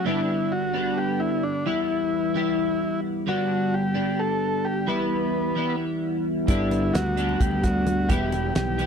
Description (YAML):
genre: psychedelic rock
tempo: 261 BPM (eighths)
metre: 7/8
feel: straight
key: unclear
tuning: A4 = 436 Hz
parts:
  - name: combo organ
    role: melody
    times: 0.0-8.9 s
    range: B3 to A4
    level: -27 LUFS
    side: equal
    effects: slapback echo
  - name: twelve-string electric guitar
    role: riff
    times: 0.0-8.9 s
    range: G2 to E4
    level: -24 LUFS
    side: left 1 dB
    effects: rotary speaker, double-tracked left and right
  - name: fuzz fingered electric bass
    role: bass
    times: 6.5-8.9 s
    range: E1 to D2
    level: -28 LUFS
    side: equal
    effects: overdrive
  - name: damped 70s drum kit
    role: drums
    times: 6.5-8.9 s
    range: hi-hat, kick drum, snare drum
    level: -23 LUFS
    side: equal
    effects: none
  - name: congas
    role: percussion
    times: 6.5-8.8 s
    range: none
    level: -36 LUFS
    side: left 4 dB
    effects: none
room: little or no reverb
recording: dry, close 1970s-style studio recording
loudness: -22 LUFS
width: side -6 dB against mid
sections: 0.1-8.9 A section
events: none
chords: 0.1 G; 1.7 Em; 3.3 G; 4.9 Em; 6.5 G; 8.1 Em